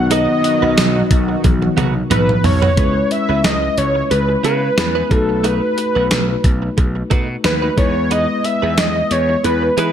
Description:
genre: 1980s-style pop.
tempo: 90 BPM.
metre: 4/4.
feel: swing 55% on 16ths.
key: unclear.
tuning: A4 = 440 Hz.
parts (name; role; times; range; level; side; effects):
wide unison lead; melody; 0.0-9.9 s; A4 to E5; -18 LUFS; equal; ping-pong delay.
bell-like tine electric piano; accompaniment; 0.0-9.9 s; G#3 to B4; -22 LUFS; left 5 dB; none.
chorused pulse-width pad; sustained chords; 0.0-2.7 s; D#3 to F#4; -22 LUFS; right 4 dB; none.
gritty slap bass; bass; 0.0-9.9 s; B1 to E3; -20 LUFS; equal; overdrive.
direct-recorded clean electric guitar; riff; 0.1-9.9 s; A3 to B4; -25 LUFS; right 8 dB; analog chorus.
clean 12-bit digital drum machine; drums; 0.1-9.9 s; hi-hat, kick drum, snare drum, tambourine, toms; -17 LUFS; equal; gated reverb.
cowbell; percussion; 0.1-9.9 s; none; -29 LUFS; right 9 dB; none.
room: light reverb, digital ambience.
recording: none.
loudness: -13 LUFS.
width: side -9 dB against mid.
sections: 0.0-2.8 A section; 2.8-9.9 B section.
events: drum fill 1.4-2.8.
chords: 0.0 B; 2.8 C#m7; 5.1 B7; 7.8 Emaj7.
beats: | 0.11 0.78 1.44 2.11 | 2.78 3.44 4.11 4.78 | 5.44 6.11 6.78 7.44 | 8.11 8.78 9.44.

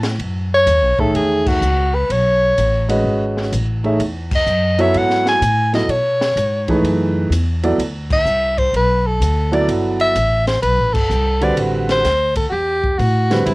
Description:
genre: modal jazz.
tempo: 127 BPM.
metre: 4/4.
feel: swing 66% on 8ths.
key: unclear.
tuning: A4 = 440 Hz.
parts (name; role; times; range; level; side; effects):
upright bass; bass; 0.0-13.5 s; G1 to B2; -20 LUFS; equal; none.
compact cocktail drum kit; drums; 0.0-13.5 s; crash cymbal, hi-hat, kick drum, ride cymbal, snare drum; -26 LUFS; equal; cassette tape.
breathy soprano saxophone; melody; 0.5-13.5 s; E4 to G#5; -16 LUFS; equal; cassette tape.
warm concert grand piano; accompaniment; 1.0-13.5 s; D3 to E5; -18 LUFS; right 1 dB; cassette tape.
room: light reverb.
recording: home recording on cassette.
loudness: -14 LUFS.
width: side -23 dB against mid.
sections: 0.2-13.5 A section.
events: band accent 1.4, 4.2, 8.0, 10.9.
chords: 0.2 B13sus4; 7.8 D13sus4.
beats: | 0.20 0.68 1.15 1.62 | 2.10 2.57 3.05 3.52 | 4.00 4.47 4.94 5.42 | 5.89 6.36 6.84 7.31 | 7.79 8.26 8.73 9.21 | 9.68 10.15 10.63 11.10 | 11.57 12.05 12.52 12.99 | 13.47.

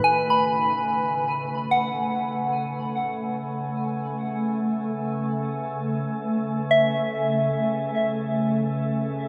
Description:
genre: ambient.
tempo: free time.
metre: none.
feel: none.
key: A major.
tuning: A4 = 441 Hz.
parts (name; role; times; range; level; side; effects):
warbly tape-like pad; sustained chords; 0.0-9.3 s; C#3 to G#5; -31 LUFS; equal; chorus, built-in reverb.
soft synth bell; arpeggios; 0.0-9.3 s; E5 to B5; -27 LUFS; equal; chorus, phaser, diffuse ambient delay.
organ-like drone; drone; 0.6-9.3 s; A3; -32 LUFS; equal; ensemble chorus, built-in reverb.
room: wet huge ambient reverb, RT60 8.4 s.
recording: none.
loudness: -25 LUFS.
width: mono.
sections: 0.0-9.3 A section.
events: fade-in on ambient pad 0.0-9.3.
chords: 0.0 Amaj9.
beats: free time.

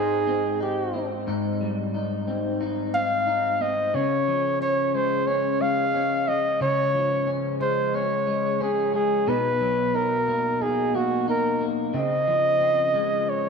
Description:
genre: dream pop.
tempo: 90 BPM.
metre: 4/4.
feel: straight.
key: Db lydian.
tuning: A4 = 437 Hz.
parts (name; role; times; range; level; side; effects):
mellow flugelhorn; melody; 0.0-13.5 s; Gb4 to F5; -23 LUFS; right 1 dB; tape echo.
electric guitar at the edge of break-up; arpeggios; 0.0-13.5 s; Ab2 to Eb4; -26 LUFS; left 2 dB; lush chorus, tape echo.
room: wet scoring stage reverb, RT60 1.6 s, studio reverb.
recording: none.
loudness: -21 LUFS.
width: side -5 dB against mid.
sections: 0.0-13.5 A section.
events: none.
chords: 0.0 Abmaj7; 3.9 Db; 9.3 Cbmaj7; 11.9 Dbmaj7.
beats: 0.61 | 1.27 1.94 2.61 3.27 | 3.94 4.61 5.27 5.94 | 6.61 7.27 7.94 8.61 | 9.27 9.94 10.61 11.27 | 11.94 12.61 13.27.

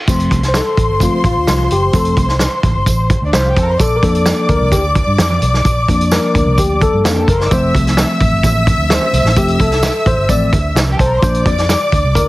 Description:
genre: uptempo 1960s-style soul.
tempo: 129 BPM.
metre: 4/4.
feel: straight.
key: F major.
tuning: A4 = 440 Hz.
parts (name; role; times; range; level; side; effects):
rich studio string section; second line; 0.1-12.3 s; D4 to E6; -18 LUFS; left 1 dB; none.
tine electric piano; accompaniment; 0.1-12.3 s; F3 to D5; -16 LUFS; left 1 dB; none.
vintage muted fingered electric bass; bass; 0.1-12.3 s; F1 to G2; -17 LUFS; equal; none.
warm soul drum kit; drums; 0.1-12.3 s; hi-hat, kick drum, snare drum; -16 LUFS; equal; none.
congas; percussion; 0.1-12.3 s; none; -27 LUFS; right 4 dB; none.
tambourine; percussion; 0.1-12.3 s; none; -29 LUFS; right 5 dB; none.
room: light reverb, studio ambience.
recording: heavily compressed radio sound, multiband compression.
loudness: -11 LUFS.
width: side -18 dB against mid.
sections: 0.1-12.3 A section.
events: tine electric piano solo 0.1-12.3.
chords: 0.1 F; 3.8 Bb; 7.5 F; 11.2 Bb.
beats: | 0.08 0.55 1.01 1.47 | 1.94 2.40 2.87 3.33 | 3.79 4.26 4.72 5.19 | 5.65 6.12 6.58 7.05 | 7.51 7.97 8.44 8.90 | 9.37 9.83 10.30 10.76 | 11.23 11.69 12.15.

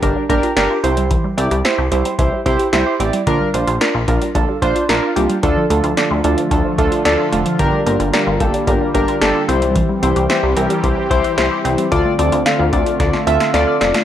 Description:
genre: synth-pop.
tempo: 111 BPM.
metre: 4/4.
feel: straight.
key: unclear.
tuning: A4 = 441 Hz.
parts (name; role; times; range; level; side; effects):
warm analog keys; accompaniment; 0.0-14.0 s; D4 to F5; -17 LUFS; equal; chorus.
resonant blip pluck; arpeggios; 0.0-14.0 s; D3 to E5; -23 LUFS; right 1 dB; phaser, slapback echo.
chorused synth bass; bass; 0.0-13.9 s; F1 to D2; -20 LUFS; equal; none.
electro analog drum machine; drums; 0.0-14.0 s; hi-hat, kick drum, snare drum; -21 LUFS; equal; none.
sweeping resonant pad; sustained chords; 5.4-14.0 s; D3 to G4; -22 LUFS; equal; chorus.
room: light reverb, digital ambience.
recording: none.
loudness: -14 LUFS.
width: side -10 dB against mid.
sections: 0.0-14.0 A section.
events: drum fill 13.0-14.0.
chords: 0.0 Gm7; 0.8 C; 3.3 Bb6; 5.4 Dm; 7.6 Gm7; 9.5 C; 11.9 Dm7.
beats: 0.03 0.57 | 1.11 1.65 2.19 2.73 | 3.27 3.81 4.35 4.89 | 5.43 5.97 6.51 7.05 | 7.59 8.13 8.67 9.21 | 9.76 10.30 10.84 11.38 | 11.92 12.46 13.00 13.54.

